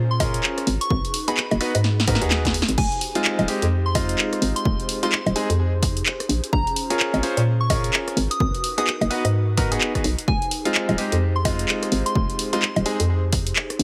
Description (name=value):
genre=UK garage, two-step garage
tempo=128 BPM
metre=4/4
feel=swing 60% on 16ths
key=F minor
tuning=A4 = 439 Hz
part: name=airy breathy pad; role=sustained chords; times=0.0-13.8 s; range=Db4 to C5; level=-36 LUFS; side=equal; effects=none
part: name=hollow knocking FM bass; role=bass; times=0.0-13.8 s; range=Eb1 to Bb2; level=-24 LUFS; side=equal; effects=tube saturation
part: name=soft synth bell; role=melody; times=0.1-12.8 s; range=Ab5 to Eb6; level=-32 LUFS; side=equal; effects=chorus, phaser, dub echo
part: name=bright concert grand piano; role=stabs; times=0.2-13.0 s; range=Ab3 to C5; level=-28 LUFS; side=equal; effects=delay
part: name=electronic kick drum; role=drums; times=0.2-13.4 s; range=none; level=-28 LUFS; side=equal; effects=none
part: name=punchy analog drum machine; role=drums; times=0.2-13.8 s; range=bongos, crash cymbal, handclaps, hi-hat, rim click, snare drum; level=-26 LUFS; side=equal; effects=none
room=light reverb, digital ambience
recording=heavily compressed radio sound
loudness=-22 LUFS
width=mono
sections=0.0-13.8 A section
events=drum fill 1.8-2.8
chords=0.0 Bbm7; 0.7 Abm7; 2.8 Fm7; 6.3 Bbm7; 8.2 Abm7; 10.3 Fm7